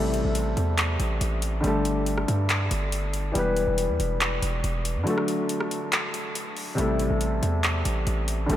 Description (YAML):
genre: hip hop, trap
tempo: 140 BPM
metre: 4/4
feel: half-time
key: unclear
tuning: A4 = 439 Hz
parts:
  - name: felt-muted upright piano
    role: accompaniment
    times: 0.0-8.6 s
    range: C3 to B4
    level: -27 LUFS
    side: left 2 dB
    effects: none
  - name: hard-hitting 808-style bass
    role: bass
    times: 0.0-8.6 s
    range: E1 to G2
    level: -26 LUFS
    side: right 1 dB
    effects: none
  - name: trap drum kit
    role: drums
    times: 0.1-8.6 s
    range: handclaps, hi-hat, rim click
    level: -30 LUFS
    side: equal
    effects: none
room: moderate cathedral reverb, RT60 6.3 s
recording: dreamy mix soaked in reverb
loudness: -23 LUFS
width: side -12 dB against mid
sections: 0.0-8.6 A section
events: kick muted 5.1-6.8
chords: 0.0 Am7; 1.6 Gsus2; 3.4 Em; 5.1 D; 6.8 Am7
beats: 0.35 0.78 1.21 | 1.64 2.07 2.50 2.93 | 3.35 3.78 4.21 4.64 | 5.07 5.50 5.93 6.35 | 6.78 7.21 7.64 8.07 | 8.50